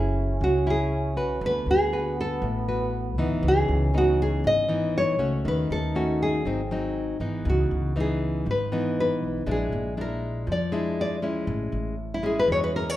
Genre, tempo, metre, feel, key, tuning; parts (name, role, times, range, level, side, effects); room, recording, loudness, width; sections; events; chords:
bossa nova; 119 BPM; 4/4; straight; C# minor; A4 = 440 Hz
nylon-string guitar; melody; 0.0-13.0 s; E4 to D#5; -26 LUFS; equal
breathy trombone; second line; 0.0-7.2 s; B3 to D#4; -34 LUFS; equal
nylon-string guitar; accompaniment; 0.0-13.0 s; G#2 to B4; -28 LUFS; left 1 dB
upright bass; bass; 0.0-13.0 s; F#1 to E#2; -28 LUFS; equal
moderate large studio reverb, RT60 1.2 s; band playing live in one room; -23 LUFS; side -14 dB against mid
0.0-7.5 A section; 7.5-13.0 B section
nylon-string guitar solo 7.5-13.0
0.0 F#7(no3); 1.4 D69; 3.4 C#m9; 5.4 D#m7b5; 6.5 G#7; 7.5 C#m9; 9.5 A#7#11; 11.5 Amaj7